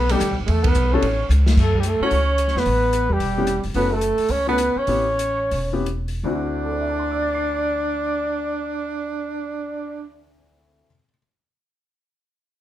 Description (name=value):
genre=jazz, small-group swing and bop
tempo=154-221 BPM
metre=4/4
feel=swing 60% on 8ths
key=D mixolydian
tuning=A4 = 440 Hz
part: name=mellow flugelhorn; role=melody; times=0.0-10.1 s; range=G4 to D5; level=-24 LUFS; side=left 2 dB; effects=plate reverb
part: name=breathy tenor saxophone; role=second line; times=0.0-10.1 s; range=G3 to D4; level=-26 LUFS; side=right 6 dB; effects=none
part: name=upright bass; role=bass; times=0.0-10.8 s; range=E1 to F#2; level=-22 LUFS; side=equal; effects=none
part: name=warm upright piano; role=accompaniment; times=0.1-11.2 s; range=D2 to C7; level=-26 LUFS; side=left 4 dB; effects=none
part: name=open jazz drum kit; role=drums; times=0.1-6.2 s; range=crash cymbal, hi-hat, kick drum, ride cymbal, snare drum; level=-26 LUFS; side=equal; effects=none
room=moderate studio reverb, RT60 0.7 s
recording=none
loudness=-19 LUFS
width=side -12 dB against mid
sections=0.0-1.6 A section; 1.6-6.2 B section; 6.2-9.3 C section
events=band accent 0.6; drum fill 1.3; slowing down 3.7-6.2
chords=0.5 Em; 1.0 A; 1.6 F#m7; 2.7 A7sus2; 3.7 F#m7; 4.9 A9; 6.2 D9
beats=0.22 | 0.49 0.76 1.03 1.30 | 1.57 1.84 2.12 2.39 | 2.66 2.93 3.21 3.48 | 3.75 4.02 4.30 4.59 | 4.88 5.19 5.52 5.87 | 6.24 6.63 7.02 7.41 | 7.79 8.18 8.57 8.96